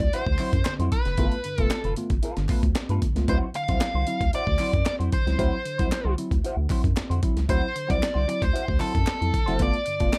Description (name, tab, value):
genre	funk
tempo	114 BPM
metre	4/4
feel	straight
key	D mixolydian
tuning	A4 = 440 Hz
part	nasal lead guitar with a parked wah	melody	0.0-10.2 s	A4 to F5	-31 LUFS	equal	overdrive
part	semi-hollow electric guitar	accompaniment	0.0-10.2 s	B3 to C5	-36 LUFS	equal	wah
part	tine electric piano	stabs	0.0-10.2 s	G2 to F4	-34 LUFS	equal	none
part	round analog bass	bass	0.0-10.1 s	F1 to G2	-28 LUFS	equal	none
part	breakbeat sampler-style drum kit	drums	0.0-10.2 s	hi-hat, kick drum, snare drum	-28 LUFS	equal	none
part	group handclap	percussion	0.4-10.2 s	none	-42 LUFS	equal	none
room	little or no reverb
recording	none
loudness	-25 LUFS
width	mono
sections	0.0-10.2 A section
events	none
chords	0.0 D9; 1.2 G9; 3.3 D9; 9.6 G9